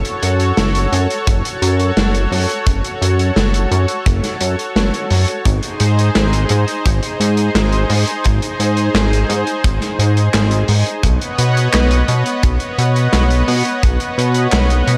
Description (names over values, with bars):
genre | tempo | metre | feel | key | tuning
synthwave | 86 BPM | 4/4 | straight | unclear | A4 = 440 Hz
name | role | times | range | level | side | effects
lush unison pad | sustained chords | 0.0-15.0 s | B3 to F#5 | -22 LUFS | equal | chorus, sidechain pumping
chorused synth bass | bass | 0.0-15.0 s | F#1 to B2 | -17 LUFS | equal | none
vintage drum kit | drums | 0.0-15.0 s | handclaps, hi-hat, snare drum | -22 LUFS | equal | gated reverb
kick drum | drums | 1.3-14.0 s | none | -20 LUFS | equal | none
room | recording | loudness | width
light reverb, small room ambience | none | -16 LUFS | mono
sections
0.0-15.0 A section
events
none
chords
0.0 F#m; 5.5 G#; 11.0 Badd9